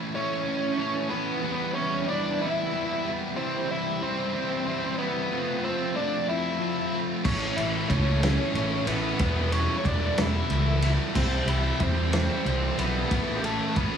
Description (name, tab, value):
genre	quiet-loud alternative rock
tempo	62 BPM (dotted quarters)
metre	6/8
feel	straight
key	unclear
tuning	A4 = 440 Hz
part	string machine, cellos	sustained chords	0.0-14.0 s	F3 to A5	-39 LUFS	equal	none
part	fuzz guitar	riff	0.0-14.0 s	A2 to F4	-29 LUFS	equal	distortion
part	nasal lead guitar with a parked wah	melody	0.1-14.0 s	A3 to E5	-29 LUFS	equal	overdrive
part	scooped high-gain guitar	riff	7.2-14.0 s	E2 to C4	-33 LUFS	equal	distortion
part	picked electric bass	bass	7.2-14.0 s	E1 to E2	-27 LUFS	equal	none
part	loose indie drum kit	drums	7.2-13.9 s	crash cymbal, kick drum, ride cymbal, snare drum	-30 LUFS	equal	none
room	light reverb, small room ambience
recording	none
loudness	-24 LUFS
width	side -7 dB against mid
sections	0.0-14.0 A section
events	none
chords	0.0 A; 1.4 Em; 3.4 C; 5.3 F; 7.3 A; 9.2 Em; 11.2 C; 13.1 A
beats	0.46 | 1.43 2.40 | 3.37 4.34 | 5.31 6.28 | 7.25 8.23 | 9.20 10.18 | 11.15 12.13 | 13.11